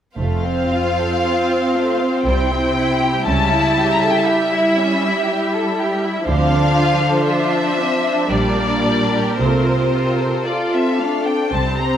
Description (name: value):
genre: classical, slow romantic movement for string orchestra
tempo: 59 BPM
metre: 3/4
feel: uneven beats, rubato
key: F major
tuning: A4 = 440 Hz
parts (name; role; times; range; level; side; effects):
- rich studio violin section; melody; 0.2-12.0 s; C5 to Bb5; -22 LUFS; left 4 dB; none
- rich studio violin section; second line; 0.2-12.0 s; G3 to E5; -20 LUFS; left 1 dB; none
- rich studio viola section; accompaniment; 0.2-12.0 s; F3 to F4; -20 LUFS; right 1 dB; none
- rich studio cello section; bass; 0.2-12.0 s; F2 to D3; -23 LUFS; right 2 dB; none
- rich studio double bass section; bass; 0.2-12.0 s; F1 to D2; -23 LUFS; right 2 dB; none
room: wet scoring stage reverb, RT60 1.8 s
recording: none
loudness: -15 LUFS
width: side -9 dB against mid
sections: 0.2-12.0 A section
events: none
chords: 0.2 F; 2.3 C; 3.3 A7/C#; 6.3 Dm7; 8.3 Gm/Bb; 9.4 F/C